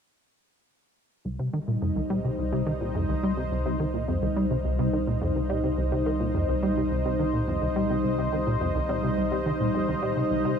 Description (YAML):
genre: ambient, sequencer-driven space music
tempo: 106 BPM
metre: 4/4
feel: straight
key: C minor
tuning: A4 = 440 Hz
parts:
  - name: sweeping resonant pad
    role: sustained chords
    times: 1.2-10.6 s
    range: G3 to Eb5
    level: -27 LUFS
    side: equal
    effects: chorus
  - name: soft round pluck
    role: arpeggios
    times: 1.2-10.4 s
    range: none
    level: barely audible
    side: none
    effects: none
  - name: plucky analog bass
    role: riff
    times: 1.2-10.5 s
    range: C2 to G3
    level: -28 LUFS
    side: equal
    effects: wide subtle chorus, analog delay
  - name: warm sub bass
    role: bass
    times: 1.2-10.6 s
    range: C2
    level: -33 LUFS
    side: equal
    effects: none
  - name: wind-like tuned noise texture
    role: texture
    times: 1.9-10.6 s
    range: F5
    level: -52 LUFS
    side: right 2 dB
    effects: none
room: moderate plate reverb, RT60 2.8 s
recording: dreamy mix soaked in reverb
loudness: -24 LUFS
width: side -7 dB against mid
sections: 1.2-10.6 A section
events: none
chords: 1.2 Cm